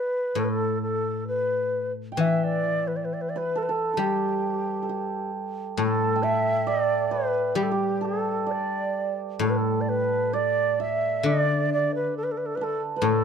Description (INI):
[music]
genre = chinese traditional, Chinese chamber ensemble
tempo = 67 BPM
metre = 2/4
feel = rubato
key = unclear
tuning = A4 = 440 Hz
[part]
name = xiao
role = melody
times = 0.0-13.2 s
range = G4 to G5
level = -26 LUFS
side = equal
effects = none
[part]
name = guzheng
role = accompaniment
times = 0.4-13.2 s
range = A2 to G3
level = -28 LUFS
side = left 4 dB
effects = none
[part]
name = hammered dulcimer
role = second line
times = 2.1-13.2 s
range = G4 to G5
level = -29 LUFS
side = right 7 dB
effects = none
[sound]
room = moderate studio reverb, RT60 0.6 s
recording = dark, warm production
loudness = -23 LUFS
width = side -7 dB against mid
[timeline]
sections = 0.0-9.4 A section; 9.4-13.2 B section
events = none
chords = none